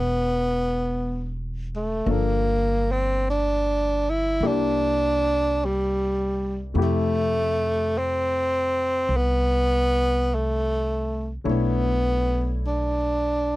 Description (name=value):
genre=jazz ballad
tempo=51 BPM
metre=4/4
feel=swing 68% on 8ths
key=unclear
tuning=A4 = 438 Hz
part: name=breathy tenor saxophone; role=melody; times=0.0-13.6 s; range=G3 to E4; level=-23 LUFS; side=equal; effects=none
part: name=warm baby grand piano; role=accompaniment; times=0.0-13.6 s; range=C3 to C#5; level=-30 LUFS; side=left 5 dB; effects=none
part: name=upright bass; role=bass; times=0.0-13.6 s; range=E1 to F2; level=-27 LUFS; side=equal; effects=none
room=little or no reverb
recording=dry, close 1970s-style studio recording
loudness=-21 LUFS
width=side -17 dB against mid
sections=0.0-13.6 A section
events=none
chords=0.0 A7sus2; 2.1 Gm7; 4.4 C9; 6.8 Fmaj7; 11.4 Bm11